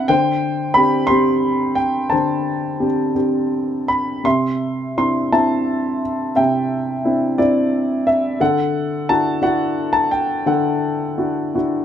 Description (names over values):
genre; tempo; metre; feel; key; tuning
classical, lyrical solo piano; 58 BPM (dotted quarters); 6/8; uneven beats, rubato; unclear; A4 = 440 Hz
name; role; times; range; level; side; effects
dark grand piano; solo; 0.0-11.8 s; C3 to C6; -16 LUFS; equal; none
room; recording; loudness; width
light reverb; none; -16 LUFS; side -9 dB against mid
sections
0.0-11.8 A section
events
grand piano fill 11.5-11.8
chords
0.1 D7sus4; 4.3 Cadd9; 8.4 Dadd9